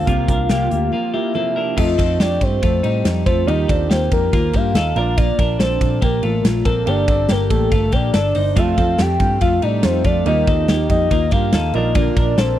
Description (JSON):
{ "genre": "jangly indie pop", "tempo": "142 BPM", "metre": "4/4", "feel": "straight", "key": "F mixolydian", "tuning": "A4 = 440 Hz", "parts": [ { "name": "soft octave-layered synth lead", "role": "melody", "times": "0.0-12.6 s", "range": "A4 to G5", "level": "-21 LUFS", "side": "left 1 dB", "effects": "chorus, tape echo" }, { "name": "fingerpicked steel-string acoustic guitar", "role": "accompaniment", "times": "0.0-2.3, 8.6-12.6 s", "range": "F2 to Bb4", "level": "-26 LUFS", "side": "right 8 dB", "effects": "none" }, { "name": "warm upright piano", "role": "accompaniment", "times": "0.0-12.6 s", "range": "A3 to D5", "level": "-28 LUFS", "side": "right 7 dB", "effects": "none" }, { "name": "twelve-string electric guitar", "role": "arpeggios", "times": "0.0-12.6 s", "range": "G3 to C5", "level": "-23 LUFS", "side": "left 4 dB", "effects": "none" }, { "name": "vintage muted picked electric bass", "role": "bass", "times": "0.0-12.6 s", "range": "G1 to A2", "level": "-20 LUFS", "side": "equal", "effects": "none" }, { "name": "big rock drum kit", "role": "drums", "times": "0.1-12.5 s", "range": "crash cymbal, hi-hat, kick drum, ride cymbal, snare drum", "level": "-20 LUFS", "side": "equal", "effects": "none" } ], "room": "light reverb", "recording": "dry, close 1970s-style studio recording", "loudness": "-15 LUFS", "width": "side -12 dB against mid", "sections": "0.0-1.8 A section; 1.8-12.6 B section", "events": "break 0.9-1.8", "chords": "0.1 C7sus4; 1.8 F; 3.5 Ebadd9; 5.0 Bb; 6.9 Gmadd9; 8.6 F; 10.3 Ebadd9; 11.7 Bb" }